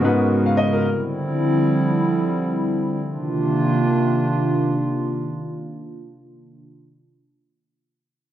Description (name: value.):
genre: amapiano.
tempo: free time.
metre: none.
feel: none.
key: C minor.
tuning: A4 = 440 Hz.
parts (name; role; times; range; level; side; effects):
warm concert grand piano; accompaniment; 0.0-1.0 s; Ab2 to F5; -18 LUFS; left 2 dB; none.
hollow soft pad; sustained chords; 0.0-6.6 s; C3 to Bb4; -20 LUFS; right 1 dB; chorus.
room: little or no reverb.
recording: dry, gritty hardware recording, cassette tape.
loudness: -18 LUFS.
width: side -11 dB against mid.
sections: 0.0-3.0 A section; 3.0-7.4 B section.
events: drop 0.0-3.0.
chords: 0.0 Abm11; 0.8 Dm11; 3.0 Cm11.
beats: free time.